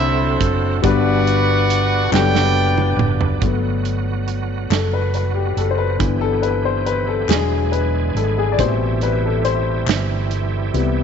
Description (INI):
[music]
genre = slow gospel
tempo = 46 BPM (dotted quarters)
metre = 6/8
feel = straight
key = G major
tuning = A4 = 440 Hz
[part]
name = clear horn section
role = melody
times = 0.0-3.4 s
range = E4 to G5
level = -20 LUFS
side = right 1 dB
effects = none
[part]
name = warm upright piano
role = accompaniment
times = 0.0-11.0 s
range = G2 to B5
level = -21 LUFS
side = left 9 dB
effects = none
[part]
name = bright tonewheel organ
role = sustained chords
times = 0.0-11.0 s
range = C3 to G#4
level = -28 LUFS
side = right 11 dB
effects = slow rotary speaker, overdrive, chorus vibrato
[part]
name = hollow-body short-scale fingered electric bass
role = bass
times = 0.0-11.0 s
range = E1 to C2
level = -20 LUFS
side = right 2 dB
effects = none
[part]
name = natural country drum kit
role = drums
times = 0.4-10.9 s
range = hi-hat, kick drum, snare drum, toms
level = -22 LUFS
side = right 6 dB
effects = none
[part]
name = group handclap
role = percussion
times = 2.1-10.3 s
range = none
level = -32 LUFS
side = left 12 dB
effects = none
[sound]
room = light reverb, studio reverb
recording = 1960s-style stereo with parts hard left and right, nothing above 7.7 kHz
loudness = -16 LUFS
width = side -7 dB against mid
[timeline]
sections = 0.0-3.4 A section; 3.4-11.0 B section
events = drum fill 2.1-3.4; upright piano solo 3.4-11.0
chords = 0.0 D7; 0.8 Gmaj7; 6.0 Cmaj7/G; 7.3 E7; 8.6 Am7